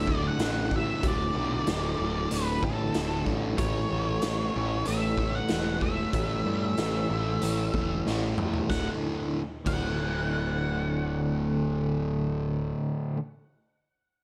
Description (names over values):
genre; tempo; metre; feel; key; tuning
classic rock; 94 BPM; 4/4; straight; D major; A4 = 440 Hz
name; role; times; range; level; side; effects
octave-fuzz lead guitar; melody; 0.0-12.0 s; A4 to F#5; -37 LUFS; equal; distortion, tape echo
biting overdriven guitar; riff; 0.0-13.2 s; D2 to A3; -35 LUFS; equal; harmonic tremolo
sludgy distorted guitar; riff; 0.0-13.2 s; D2 to A3; -35 LUFS; equal; overdrive
growling picked electric bass; bass; 0.0-12.7 s; D1 to G2; -35 LUFS; equal; overdrive
raw garage drum kit; drums; 0.1-9.8 s; crash cymbal, hi-hat, kick drum, snare drum, toms; -35 LUFS; equal; none
room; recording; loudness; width
light reverb; none; -28 LUFS; mono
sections
0.0-8.7 A section; 8.7-11.3 B section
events
drum fill 8.1-8.7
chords
0.0 D5; 3.6 A; 8.7 D